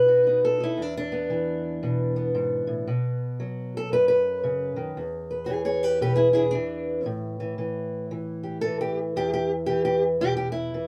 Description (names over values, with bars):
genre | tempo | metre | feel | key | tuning
acoustic country blues, solo or duo | 115 BPM | 4/4 | swing 62% on 8ths | unclear | A4 = 440 Hz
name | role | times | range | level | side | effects
fingerpicked steel-string acoustic guitar | solo | 0.0-10.9 s | E2 to C#5 | -25 LUFS | equal | none
room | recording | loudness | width
moderate booth ambience, RT60 0.2 s | none | -26 LUFS | mono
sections
0.0-5.0 A section; 5.0-10.9 B section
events
steel-string acoustic guitar solo 5.0-10.9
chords
0.0 B7; 0.8 E7; 2.9 B5; 5.0 E7; 7.1 A5; 9.2 E5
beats
0.27 | 0.80 1.32 1.84 2.36 | 2.88 3.40 3.93 4.45 | 4.97 5.49 6.02 6.54 | 7.06 7.59 8.11 8.63 | 9.15 9.68 10.20 10.72